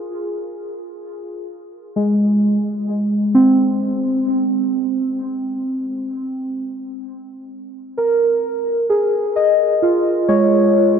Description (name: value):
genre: ambient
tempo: 65 BPM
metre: 4/4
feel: straight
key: unclear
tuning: A4 = 438 Hz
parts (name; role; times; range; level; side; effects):
- muted felt-like synth keys; solo; 0.0-11.0 s; Ab3 to Eb5; -16 LUFS; equal; chorus, phaser, diffuse ambient delay
room: wet huge ambient reverb, RT60 8.4 s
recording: none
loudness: -15 LUFS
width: side -7 dB against mid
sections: 0.0-4.3 A section; 4.3-11.0 A section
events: none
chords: 0.0 Bb7(no3); 0.6 Ab; 4.3 N.C.; 8.0 Db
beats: | 0.58 1.51 2.43 3.35 | 4.28 5.20 6.12 7.05 | 7.97 8.89 9.81 10.74